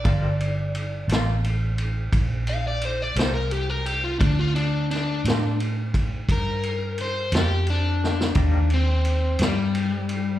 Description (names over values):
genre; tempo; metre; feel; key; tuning
slow blues; 58 BPM (dotted quarters); 12/8; straight; G minor; A4 = 439 Hz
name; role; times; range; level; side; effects
overdriven semi-hollow guitar; melody; 0.0-10.4 s; G3 to F5; -27 LUFS; left 3 dB; slapback echo
clean electric guitar; accompaniment; 0.0-9.6 s; Eb3 to A4; -35 LUFS; left 2 dB; tremolo, slapback echo
vintage muted fingered electric bass; bass; 0.0-10.4 s; G1 to A2; -24 LUFS; equal; none
vintage drum kit; drums; 0.0-10.2 s; kick drum, ride cymbal, snare drum; -27 LUFS; equal; none
room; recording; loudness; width
little or no reverb; live gig heard through the venue's PA, club reverb; -21 LUFS; side -13 dB against mid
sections
0.0-10.4 A section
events
overdriven electric guitar solo 0.0-10.4; drum fill 8.0-8.3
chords
0.1 Gm9; 8.3 Ebmaj7